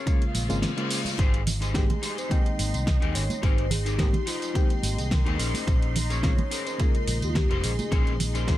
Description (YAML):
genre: nu-disco, nu disco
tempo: 107 BPM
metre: 4/4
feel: swing 53% on 16ths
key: Bb dorian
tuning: A4 = 435 Hz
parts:
  - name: lush unison pad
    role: sustained chords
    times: 0.0-8.6 s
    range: Eb4 to C6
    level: -37 LUFS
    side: equal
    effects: chorus, phaser, sidechain pumping
  - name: electric guitar at the edge of break-up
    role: riff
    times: 0.0-8.6 s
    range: Db4 to Db5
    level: -34 LUFS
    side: left 5 dB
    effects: lush chorus
  - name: reed electric piano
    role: accompaniment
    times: 0.1-8.6 s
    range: Db3 to G5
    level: -34 LUFS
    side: equal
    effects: overdrive
  - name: electronic kick drum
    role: drums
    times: 0.1-8.6 s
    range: none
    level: -24 LUFS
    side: equal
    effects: studio reverb
  - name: pop drum kit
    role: drums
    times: 0.1-8.6 s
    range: hi-hat, snare drum, tambourine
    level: -32 LUFS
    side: equal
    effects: studio reverb
  - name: reverse cymbal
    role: sound effects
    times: 0.3-1.2 s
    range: none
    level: -36 LUFS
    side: left 5 dB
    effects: none
  - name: fingered electric bass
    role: bass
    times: 0.3-8.6 s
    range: F1 to Eb2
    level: -28 LUFS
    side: equal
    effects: sidechain pumping
  - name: congas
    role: percussion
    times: 0.3-8.3 s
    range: none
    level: -33 LUFS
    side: right 4 dB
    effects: none
  - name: soft octave-layered synth lead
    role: melody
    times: 1.8-8.6 s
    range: F4 to Eb5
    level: -35 LUFS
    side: equal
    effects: chorus, phaser, ping-pong delay
room: digital ambience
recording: none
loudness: -23 LUFS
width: side -14 dB against mid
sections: 0.0-8.6 A section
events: reverse cymbal 0.3-1.2; break 0.6-1.2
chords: 0.0 Bbm9; 1.2 Abmaj7; 5.4 Bbm9